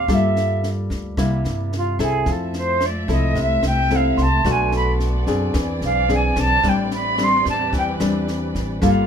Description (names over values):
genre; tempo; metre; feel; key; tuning
bossa nova; 110 BPM; 4/4; straight; unclear; A4 = 440 Hz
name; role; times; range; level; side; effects
jazz flute; melody; 0.0-9.1 s; F4 to C6; -20 LUFS; right 2 dB; none
bell-like tine electric piano; accompaniment; 0.0-5.6 s; C6 to D6; -34 LUFS; equal; none
nylon-string guitar; accompaniment; 0.0-9.1 s; A2 to A4; -22 LUFS; left 2 dB; none
upright bass; bass; 0.0-9.1 s; G1 to G2; -23 LUFS; right 1 dB; none
compact cocktail drum kit; drums; 0.1-8.9 s; kick drum, rim click, snare drum; -27 LUFS; left 1 dB; none
warm symphonic string section; sustained chords; 2.3-9.1 s; A3 to E5; -29 LUFS; right 2 dB; none
room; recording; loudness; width
moderate small room reverb, RT60 0.5 s; minimal, uncompressed stereo recording; -17 LUFS; side -7 dB against mid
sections
0.0-9.1 A section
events
flute solo 0.0-9.1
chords
0.1 Gm9; 1.2 C7; 2.3 Fmaj7; 4.5 Bm7; 5.5 E7b13; 6.6 Am11